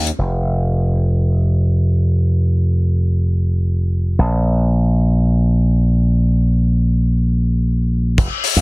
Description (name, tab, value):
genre	nu-disco, nu disco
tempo	free time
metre	none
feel	none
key	unclear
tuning	A4 = 441 Hz
part	slap bass with an envelope filter	bass	0.0-8.6 s	F1 to Eb2	-14 LUFS	equal	none
part	damped 70s drum kit	drums	0.1-0.2, 8.2-8.6 s	crash cymbal, hi-hat	-19 LUFS	left 7 dB	small room ambience
part	kick drum	drums	8.2-8.3 s	none	-15 LUFS	equal	small room ambience
room	little or no reverb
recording	dense, heavily limited modern master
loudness	-14 LUFS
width	side -23 dB against mid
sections	0.2-8.2 A section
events	none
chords	none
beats	free time